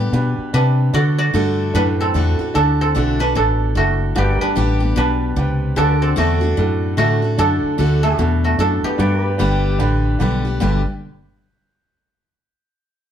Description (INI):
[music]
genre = honky-tonk and classic country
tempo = 149 BPM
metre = 4/4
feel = swing 61% on 8ths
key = G major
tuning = A4 = 440 Hz
[part]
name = koto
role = melody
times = 0.0-11.3 s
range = A3 to D5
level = -21 LUFS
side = right 1 dB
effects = none
[part]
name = bright upright piano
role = accompaniment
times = 0.0-10.8 s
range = D4 to B4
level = -24 LUFS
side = right 4 dB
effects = none
[part]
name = picked steel-string acoustic guitar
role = accompaniment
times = 0.0-10.8 s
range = G2 to G4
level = -23 LUFS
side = left 3 dB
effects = none
[part]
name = vintage muted fingered electric bass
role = bass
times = 0.0-10.8 s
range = F#1 to D3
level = -18 LUFS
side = equal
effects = none
[part]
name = pedal steel guitar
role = sustained chords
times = 4.2-10.6 s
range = F#4 to D5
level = -28 LUFS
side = left 1 dB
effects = none
[sound]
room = moderate studio reverb, RT60 0.8 s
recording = heard from further back in the room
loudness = -15 LUFS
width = side -9 dB against mid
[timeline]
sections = 0.0-10.6 A section; 10.6-12.2 B section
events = none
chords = 0.0 G; 0.9 D; 4.2 G; 5.8 D; 9.0 G